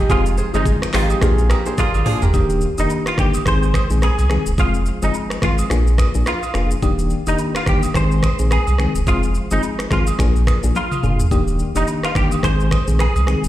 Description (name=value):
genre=afrobeats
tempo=107 BPM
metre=4/4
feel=swing 58% on 16ths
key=Eb major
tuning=A4 = 441 Hz
part: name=kora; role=riff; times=0.0-3.6 s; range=Eb4 to D5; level=-24 LUFS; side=right 5 dB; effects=ping-pong delay
part: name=direct-recorded clean electric guitar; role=melody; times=0.1-13.4 s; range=Eb4 to C5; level=-24 LUFS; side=equal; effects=ensemble chorus, ping-pong delay
part: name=FM electric piano with tremolo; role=accompaniment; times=0.1-13.5 s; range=Eb3 to Ab4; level=-22 LUFS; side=left 3 dB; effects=none
part: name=warm sub bass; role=bass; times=0.1-13.5 s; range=Eb1 to C2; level=-19 LUFS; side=equal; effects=none
part: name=afro-pop drum kit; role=drums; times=0.1-13.5 s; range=finger snaps, handclaps, hi-hat, kick drum, rim click, shaker, toms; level=-21 LUFS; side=equal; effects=none
part: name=agogo bells and woodblock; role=percussion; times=0.1-13.3 s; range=none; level=-31 LUFS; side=right 7 dB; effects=none
part: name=warm horn section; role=second line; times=1.8-2.2 s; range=F3 to Ab4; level=-28 LUFS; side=equal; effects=none
room=little or no reverb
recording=played on a big sound system in a bare room, large studio reverb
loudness=-15 LUFS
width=side -14 dB against mid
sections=0.0-2.3 A section; 2.3-13.5 B section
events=band accent 0.1-2.3; drum fill 1.8-2.3, 10.8-11.3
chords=0.1 Fm; 1.2 Bb7; 2.3 Ebmaj7; 3.5 Ab; 4.6 Fm; 5.7 Bb7; 6.8 Ebmaj7; 7.9 Ab; 9.1 Fm; 10.2 Bb7; 11.3 Ebmaj7; 12.4 Ab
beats=| 0.10 0.66 1.22 1.78 | 2.34 2.90 3.46 4.02 | 4.58 5.14 5.70 6.26 | 6.83 7.39 7.95 8.51 | 9.07 9.63 10.19 10.75 | 11.31 11.87 12.43 12.99